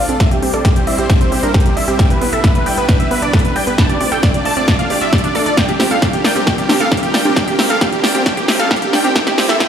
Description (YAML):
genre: uplifting trance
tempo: 134 BPM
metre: 4/4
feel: straight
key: unclear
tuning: A4 = 440 Hz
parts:
  - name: dense compressed supersaw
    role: melody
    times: 0.0-9.7 s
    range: G4 to A5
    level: -18 LUFS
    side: equal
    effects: sidechain pumping, low-pass filter, tape echo
  - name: supersaw stab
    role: second line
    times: 0.0-9.7 s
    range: G4 to A5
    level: -27 LUFS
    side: equal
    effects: none
  - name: supersaw pad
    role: sustained chords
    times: 0.0-9.7 s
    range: G3 to D5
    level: -23 LUFS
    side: right 1 dB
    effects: sidechain pumping
  - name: tight sequencer bass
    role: bass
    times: 0.0-9.5 s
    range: C2 to E2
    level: -33 LUFS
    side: equal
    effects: none
  - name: wide unison pluck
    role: arpeggios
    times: 0.1-9.6 s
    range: B3 to D5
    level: -21 LUFS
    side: right 2 dB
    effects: sidechain pumping, tape echo
  - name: big-room dance drum kit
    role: drums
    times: 0.1-9.7 s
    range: congas, hi-hat, snare drum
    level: -18 LUFS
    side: equal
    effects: sidechain pumping on hats, sidechain pumping on perc
  - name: electronic kick drum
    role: drums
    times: 0.2-9.7 s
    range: none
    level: -15 LUFS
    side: equal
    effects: none
  - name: riser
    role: sound effects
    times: 8.0-9.7 s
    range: none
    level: -28 LUFS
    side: right 2 dB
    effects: none
room: moderate scoring stage reverb, RT60 2.2 s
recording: played on a big sound system in a bare room, stone room reverb, high-pass filter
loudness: -12 LUFS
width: side -8 dB against mid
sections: 0.0-9.7 A section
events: build-up 0.0-9.7; drum fill 0.0-9.7; filter sweep on supersaw synth 0.0-9.7; filter sweep on synth pluck 0.0-9.7; filter sweep 0.0-9.7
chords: 0.2 C; 2.0 Em7; 3.8 Dm; 5.6 Gm7/D; 9.2 C